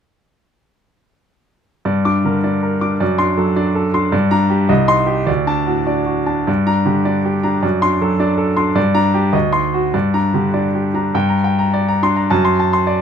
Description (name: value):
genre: classical, virtuoso piano study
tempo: 104 BPM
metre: 2/4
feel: rubato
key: G minor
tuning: A4 = 440 Hz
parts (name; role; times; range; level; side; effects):
- clear grand piano; solo; 1.9-13.0 s; C2 to D6; -14 LUFS; equal; none
room: moderate studio reverb, RT60 0.7 s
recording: none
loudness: -14 LUFS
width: side -7 dB against mid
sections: 1.9-11.1 A section; 11.1-13.0 A section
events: none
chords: 1.9 Gm; 3.0 D7/F#; 4.1 Gm; 4.7 Cm; 5.3 D; 6.5 Gm; 7.6 D7/F#; 8.8 Gm; 9.3 D7b9; 9.9 Gm; 12.3 D7/F#